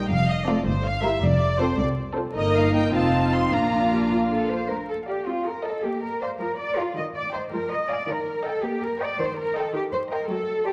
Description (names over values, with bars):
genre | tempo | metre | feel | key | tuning
quick classical-period movement for string orchestra | 107 BPM (dotted quarters) | 6/8 | rubato | Bb major | A4 = 438 Hz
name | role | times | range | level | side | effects
muted studio violin section | melody | 0.0-10.7 s | C5 to C6 | -31 LUFS | equal | none
muted studio violin section | second line | 0.0-10.7 s | F4 to A5 | -31 LUFS | equal | none
muted studio viola section | accompaniment | 0.0-10.7 s | Eb3 to F4 | -30 LUFS | equal | none
muted studio cello section | bass | 0.1-10.7 s | C2 to Eb5 | -30 LUFS | equal | none
muted studio double bass section | bass | 0.1-4.5 s | F1 to C2 | -30 LUFS | equal | none
room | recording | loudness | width
wet scoring stage reverb, RT60 1.4 s | vinyl crackle | -24 LUFS | mono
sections
0.0-4.7 A section; 4.7-10.7 A section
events
none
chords
0.1 F; 0.7 Edim/G; 1.2 F; 2.4 Eb/G; 2.9 F7; 3.5 Bb; 5.3 Adim/C; 5.8 Bb; 7.0 Eb; 7.5 Ddim/F; 8.1 Eb; 9.2 Cm/Eb